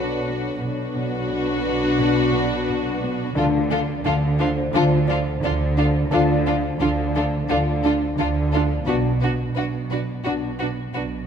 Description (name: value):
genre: cinematic, suspense film score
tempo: 87 BPM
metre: 4/4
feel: straight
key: unclear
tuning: A4 = 440 Hz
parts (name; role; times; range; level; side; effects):
- warm chamber violin section; melody; 0.0-11.0 s; A4 to B4; -32 LUFS; left 4 dB; none
- warm chamber violin section; second line; 0.0-11.0 s; F4 to F#4; -27 LUFS; left 2 dB; none
- warm chamber viola section; accompaniment; 0.0-11.0 s; D4; -28 LUFS; right 4 dB; none
- mellow French horn section; sustained chords; 0.0-10.5 s; D4 to F#4; -27 LUFS; left 9 dB; none
- dark chamber cello section; riff; 0.0-11.2 s; B2 to D4; -29 LUFS; right 1 dB; none
- dark chamber cello section; bass; 0.0-11.3 s; B2 to D3; -26 LUFS; right 2 dB; none
- dark chamber double bass section; bass; 0.0-11.3 s; B1 to D2; -26 LUFS; right 2 dB; none
- vibraphone with soft mallets; texture; 0.0-8.9 s; D4 to F5; -33 LUFS; equal; none
- timpani; percussion; 3.4-4.4 s; D3; -30 LUFS; equal; none
room: moderate scoring stage reverb, RT60 1.9 s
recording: none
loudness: -19 LUFS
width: side -7 dB against mid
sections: 0.0-11.3 A section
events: none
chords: 0.0 Bm; 3.4 Dm; 8.9 Bm